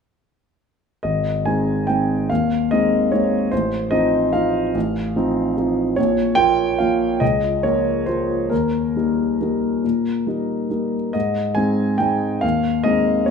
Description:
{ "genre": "classical, piano waltz", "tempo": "132-158 BPM", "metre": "3/4", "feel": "rubato", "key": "Ab major", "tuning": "A4 = 440 Hz", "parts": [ { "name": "warm grand piano", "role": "solo", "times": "1.0-13.3 s", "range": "Ab1 to Ab5", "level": "-17 LUFS", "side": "equal", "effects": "none" } ], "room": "moderate large studio reverb, RT60 1.1 s", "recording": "minimal, uncompressed stereo recording", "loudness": "-17 LUFS", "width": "side -6 dB against mid", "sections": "1.0-13.3 A section", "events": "none", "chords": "1.0 Ab; 3.5 F7/A; 6.0 Bbm; 7.2 Bbm/Db; 8.5 Eb; 11.1 Ab" }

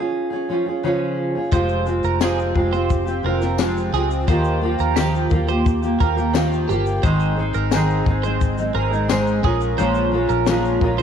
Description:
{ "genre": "acoustic pop", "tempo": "87 BPM", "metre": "4/4", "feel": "straight", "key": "unclear", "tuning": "A4 = 440 Hz", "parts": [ { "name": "fingerpicked steel-string acoustic guitar", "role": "accompaniment", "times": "0.0-11.0 s", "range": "Ab2 to Bb4", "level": "-20 LUFS", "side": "equal", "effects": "double-tracked left and right" }, { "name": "twelve-string electric guitar", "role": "arpeggios", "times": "1.5-11.0 s", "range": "G4 to C5", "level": "-27 LUFS", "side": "right 9 dB", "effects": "phaser" }, { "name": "vintage muted fingered electric bass", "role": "bass", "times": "1.5-11.0 s", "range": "F1 to Eb2", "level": "-23 LUFS", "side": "equal", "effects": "none" }, { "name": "compact cocktail drum kit", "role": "drums", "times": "1.5-11.0 s", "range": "kick drum, shaker, snare drum", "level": "-22 LUFS", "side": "left 3 dB", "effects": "none" }, { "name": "tambourine", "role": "percussion", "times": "2.2-10.6 s", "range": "none", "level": "-37 LUFS", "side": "left 15 dB", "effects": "none" } ], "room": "light reverb, studio ambience", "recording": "1960s-style stereo with parts hard left and right", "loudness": "-17 LUFS", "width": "side -8 dB against mid", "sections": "0.0-1.5 A section; 1.5-11.0 B section", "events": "none", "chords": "0.0 Db; 1.5 Fmadd9; 4.3 Ebadd9; 7.0 Ab; 9.4 Bbm7" }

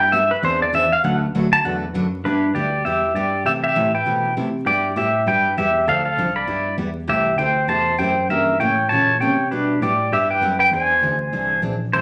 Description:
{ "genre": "country", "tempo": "198 BPM", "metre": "4/4", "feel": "swing 61% on 8ths", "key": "G major", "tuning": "A4 = 438 Hz", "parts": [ { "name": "pedal steel guitar", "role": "melody", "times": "0.0-12.0 s", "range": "D4 to B5", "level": "-20 LUFS", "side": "equal", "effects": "none" }, { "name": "picked steel-string acoustic guitar", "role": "accompaniment", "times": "0.0-12.0 s", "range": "C3 to B4", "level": "-28 LUFS", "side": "equal", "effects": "none" }, { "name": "barky tine electric piano", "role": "bass", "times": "0.0-12.0 s", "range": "A1 to C3", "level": "-29 LUFS", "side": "equal", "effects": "none" } ], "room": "moderate large studio reverb, RT60 0.8 s", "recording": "vinyl crackle", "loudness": "-19 LUFS", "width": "mono", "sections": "0.0-2.2 A section; 2.2-12.0 B section", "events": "pedal steel guitar solo 0.0-2.2", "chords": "0.4 Eaug7; 1.0 D6; 2.2 G6; 3.5 C6; 4.7 G6; 5.9 Dm7; 6.5 G6; 7.1 C6; 8.3 C#dim7; 9.5 G6; 10.7 Eaug7" }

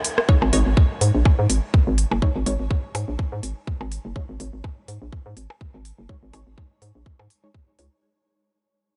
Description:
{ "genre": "minimal techno", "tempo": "124 BPM", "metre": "4/4", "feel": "swing 55% on 16ths", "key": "unclear", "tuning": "A4 = 441 Hz", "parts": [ { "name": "electronic hi-hat", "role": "drums", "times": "0.0-7.9 s", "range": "none", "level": "-32 LUFS", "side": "equal", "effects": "none" }, { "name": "electronic rim click and percussion blips", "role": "percussion", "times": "0.2-7.3 s", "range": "none", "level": "-30 LUFS", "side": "equal", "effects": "diffuse ambient delay" }, { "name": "wavetable chord stab", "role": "stabs", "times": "0.3-7.9 s", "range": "G#3 to C#5", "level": "-35 LUFS", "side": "equal", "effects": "diffuse ambient delay" }, { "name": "electronic kick drum", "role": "drums", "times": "0.3-7.7 s", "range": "none", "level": "-21 LUFS", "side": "equal", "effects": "none" }, { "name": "hollow knocking FM bass", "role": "bass", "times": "0.4-7.9 s", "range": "F#1 to G#2", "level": "-24 LUFS", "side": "equal", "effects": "sidechain pumping" } ], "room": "light reverb", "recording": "nothing above 10.8 kHz", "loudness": "-21 LUFS", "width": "mono", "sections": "0.0-8.0 A section", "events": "fade-out 0.0-8.0; filter sweep on synth stab 0.0-8.0", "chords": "none" }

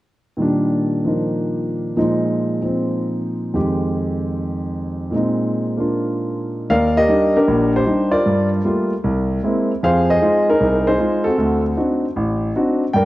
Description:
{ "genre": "solo jazz", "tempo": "153 BPM", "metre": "4/4", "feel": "swing 66% on 8ths", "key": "Eb major", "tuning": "A4 = 440 Hz", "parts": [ { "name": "warm grand piano", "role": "solo", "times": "0.4-13.1 s", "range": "A1 to G5", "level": "-16 LUFS", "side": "equal", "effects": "cassette tape" } ], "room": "moderate lush hall reverb, RT60 2.1 s", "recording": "home recording on cassette", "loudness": "-16 LUFS", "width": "side -16 dB against mid", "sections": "0.4-6.7 A section; 6.7-13.1 B section", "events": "none", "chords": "0.4 Ebmaj9/Bb; 2.0 Bb7sus4; 3.6 Fm9; 5.1 Bb9sus4; 6.7 Ebmaj7; 8.3 Gm9; 9.0 Caug7; 9.8 Fm7; 11.4 D7b9" }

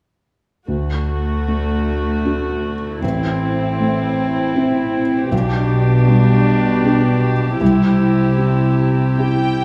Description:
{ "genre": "cinematic", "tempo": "78 BPM", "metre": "3/4", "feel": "rubato", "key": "unclear", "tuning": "A4 = 439 Hz", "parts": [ { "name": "felt-muted upright piano", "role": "accompaniment", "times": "0.7-9.6 s", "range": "A1 to G4", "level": "-21 LUFS", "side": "equal", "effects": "none" }, { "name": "rich chamber viola section", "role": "accompaniment", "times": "0.7-9.6 s", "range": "A3 to G4", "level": "-23 LUFS", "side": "equal", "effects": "none" }, { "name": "warm studio cello section", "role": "bass", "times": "0.7-9.6 s", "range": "D2 to C3", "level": "-22 LUFS", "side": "equal", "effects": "none" }, { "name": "dark studio violin section", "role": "melody", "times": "9.2-9.6 s", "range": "G5", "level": "-25 LUFS", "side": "equal", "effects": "none" } ], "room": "wet recital hall reverb, RT60 1.3 s", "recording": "recorded in a church or concert hall", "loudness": "-17 LUFS", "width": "mono", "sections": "0.7-9.6 A section", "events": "none", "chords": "0.7 D; 3.0 Am; 5.3 G/B; 7.6 C" }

